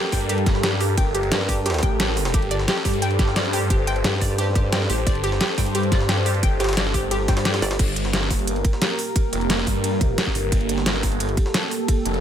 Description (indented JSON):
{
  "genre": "dark technical drum and bass",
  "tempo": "176 BPM",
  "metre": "4/4",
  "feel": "straight",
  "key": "G minor",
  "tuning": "A4 = 439 Hz",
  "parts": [
    { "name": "dark analog pad", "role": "sustained chords", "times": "0.0-12.2 s", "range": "Bb3 to C5", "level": "-27 LUFS", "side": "right 1 dB", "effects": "chorus, sidechain pumping" },
    { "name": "jungle sampler-style drum kit", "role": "drums", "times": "0.0-12.2 s", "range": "ride cymbal, snare drum", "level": "-33 LUFS", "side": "equal", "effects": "overdrive, high-pass filter on cymbals, high-pass filter on snare" },
    { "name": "analog pluck", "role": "arpeggios", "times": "0.1-7.8 s", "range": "G4 to G5", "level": "-28 LUFS", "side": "equal", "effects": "chorus, sidechain pumping, tape echo" },
    { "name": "phased detuned saw bass", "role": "bass", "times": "0.1-12.2 s", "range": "F1 to G2", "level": "-24 LUFS", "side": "equal", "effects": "phaser, overdrive, sidechain pumping" },
    { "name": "dubstep drum kit", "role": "drums", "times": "0.1-12.1 s", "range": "crash cymbal, hi-hat, snare drum", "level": "-24 LUFS", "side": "equal", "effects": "none" },
    { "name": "electronic kick drum", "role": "drums", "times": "0.1-12.0 s", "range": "none", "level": "-22 LUFS", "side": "equal", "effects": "none" },
    { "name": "formant-sweep wobble bass", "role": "bass", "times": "1.3-1.8, 4.0-4.9, 7.6-7.8 s", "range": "G1 to G2", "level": "-23 LUFS", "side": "equal", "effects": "chorus" }
  ],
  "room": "digital ambience",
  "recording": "none",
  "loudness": "-19 LUFS",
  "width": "side -9 dB against mid",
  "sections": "0.0-7.8 A section; 7.8-12.2 A section",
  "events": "drop 0.0-7.8, 7.8-12.2; kick drops out 7.5-7.8",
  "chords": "0.0 Gmadd9",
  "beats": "0.29 0.64 | 0.97 1.32 1.66 2.00 | 2.34 2.68 3.02 3.36 | 3.70 4.04 4.38 4.72 | 5.07 5.41 5.75 6.09 | 6.43 6.77 7.11 7.45 | 7.79 8.13 8.47 8.82 | 9.16 9.50 9.84 10.18 | 10.52 10.86 11.20 11.54 | 11.88"
}